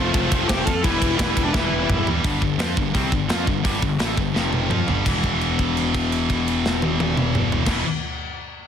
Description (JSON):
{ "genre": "heavy metal", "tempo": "170 BPM", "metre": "4/4", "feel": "straight", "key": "E phrygian", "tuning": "A4 = 440 Hz", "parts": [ { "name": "high-gain lead guitar", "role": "melody", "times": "0.0-2.1 s", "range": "D4 to A4", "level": "-26 LUFS", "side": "left 3 dB", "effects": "distortion, ping-pong delay" }, { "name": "high-gain lead guitar", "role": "second line", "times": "0.0-2.1 s", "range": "B4 to F5", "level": "-32 LUFS", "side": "right 3 dB", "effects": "distortion" }, { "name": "bright studio string section", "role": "sustained chords", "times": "0.0-2.2 s", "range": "none", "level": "barely audible", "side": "none", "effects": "none" }, { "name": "heavy high-gain guitar", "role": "riff", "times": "0.0-7.8 s", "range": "E2 to F4", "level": "-26 LUFS", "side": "right 14 dB", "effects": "distortion" }, { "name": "high-gain distorted guitar", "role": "riff", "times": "0.0-7.8 s", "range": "E2 to F4", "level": "-25 LUFS", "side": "left 10 dB", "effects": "distortion" }, { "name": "fuzz picked electric bass", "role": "bass", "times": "0.0-7.8 s", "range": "E1 to F2", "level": "-26 LUFS", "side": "equal", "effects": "overdrive" }, { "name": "tight metal drum kit", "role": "drums", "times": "0.1-7.8 s", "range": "crash cymbal, hi-hat, kick drum, ride cymbal, snare drum, toms", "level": "-23 LUFS", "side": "equal", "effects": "none" } ], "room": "studio reverb", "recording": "dense, heavily limited modern master", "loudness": "-19 LUFS", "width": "side -8 dB against mid", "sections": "0.0-2.2 A section; 2.2-5.1 B section; 5.1-7.9 C section", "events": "drum fill 1.5-2.2, 4.4-5.1; held note 5.1-7.7", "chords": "0.0 F; 0.8 Em; 2.2 G5; 4.4 F5; 4.7 G5; 5.1 E5", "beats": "0.14 0.49 | 0.84 1.19 1.54 1.89 | 2.24 2.59 2.94 3.29 | 3.65 4.00 4.35 4.70 | 5.06 5.41 5.76 6.12 | 6.47 6.82 7.17 7.53" }